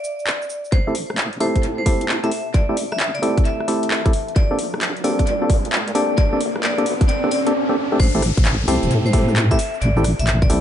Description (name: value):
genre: UK garage, two-step garage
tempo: 132 BPM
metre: 4/4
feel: swing 66% on 16ths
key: unclear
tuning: A4 = 440 Hz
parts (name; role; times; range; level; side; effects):
- vibraphone with hard mallets; melody; 0.0-10.6 s; C5 to E5; -26 LUFS; equal; analog delay
- garage drum kit; drums; 0.0-10.6 s; cabasa, handclaps, hi-hat, rim click; -25 LUFS; equal; small room reverb, tape echo
- deep soft wobble bass; bass; 0.7-10.6 s; E1 to Bb2; -22 LUFS; equal; chorus, high-pass filter
- electronic kick drum; drums; 0.7-10.5 s; none; -17 LUFS; equal; small room reverb
- riser and downlifter; sound effects; 2.8-10.6 s; none; -28 LUFS; equal; none
- percussive organ stab; stabs; 0.9-10.6 s; A3 to A4; -22 LUFS; equal; chorus, analog delay
room: light reverb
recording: echo-heavy mix, nothing above 10.5 kHz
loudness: -16 LUFS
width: side -10 dB against mid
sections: 0.7-8.0 A section; 8.0-10.6 B section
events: build-up 0.7-8.0; filter sweep on synth stab 0.7-8.0; riser 2.8-8.0; drop 8.0-10.6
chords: 0.0 N.C.; 0.7 Am7; 4.1 Bbmaj13; 7.8 Am7